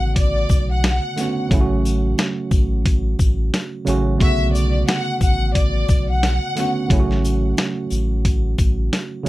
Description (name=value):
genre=hip hop, boom-bap hip-hop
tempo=89 BPM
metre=4/4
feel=swing 60% on 16ths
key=B minor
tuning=A4 = 440 Hz
part: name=rich studio violin section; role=melody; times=0.0-6.9 s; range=D5 to F#5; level=-25 LUFS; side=left 3 dB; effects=ping-pong delay
part: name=tine electric piano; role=accompaniment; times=0.0-9.3 s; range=C#3 to F#4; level=-23 LUFS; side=right 4 dB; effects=cassette tape
part: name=saturated sub bass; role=bass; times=0.0-9.3 s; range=A1 to B1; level=-20 LUFS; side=equal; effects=none
part: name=dusty soul sampler-style drum kit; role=drums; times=0.2-9.3 s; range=hi-hat, kick drum, shaker, snare drum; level=-18 LUFS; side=equal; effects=none
part: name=sleigh bells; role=percussion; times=0.2-9.3 s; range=none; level=-39 LUFS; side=left 8 dB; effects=none
room=little or no reverb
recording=none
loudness=-16 LUFS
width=side -17 dB against mid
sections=0.0-9.3 A section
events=none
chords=0.0 Bm7; 1.5 F#m/A; 4.2 Bm7; 6.9 F#m/A